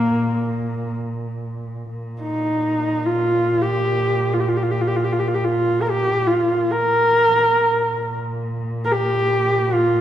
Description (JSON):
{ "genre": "mongolian traditional, Mongolian folk", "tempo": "free time", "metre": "none", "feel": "none", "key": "unclear", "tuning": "A4 = 440 Hz", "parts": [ { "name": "rich horsehead fiddle", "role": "melody", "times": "0.0-10.0 s", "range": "Bb3 to Bb4", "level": "-18 LUFS", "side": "equal", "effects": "none" }, { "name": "muted cello", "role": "drone", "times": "0.0-10.0 s", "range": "Bb2", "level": "-25 LUFS", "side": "right 1 dB", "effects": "none" } ], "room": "wet recital hall reverb, RT60 1.8 s", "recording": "dark, warm production", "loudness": "-17 LUFS", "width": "side -11 dB against mid", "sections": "0.0-1.9 A section; 1.9-10.0 A section", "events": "none", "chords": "none", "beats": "free time" }